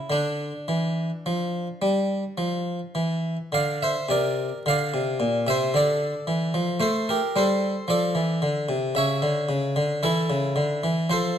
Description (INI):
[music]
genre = classical, baroque-style suite movement for harpsichord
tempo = 52-56 BPM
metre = 4/4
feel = rubato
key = D minor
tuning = A4 = 440 Hz
[part]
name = harpsichord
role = solo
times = 0.0-11.4 s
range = Bb2 to F5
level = -22 LUFS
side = equal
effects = none
[sound]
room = moderate recital hall reverb, RT60 1.3 s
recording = close, detailed microphones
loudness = -22 LUFS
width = side -9 dB against mid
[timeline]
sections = 0.0-4.6 A section; 4.6-11.4 B section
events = none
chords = 0.1 Dm; 9.0 A/C#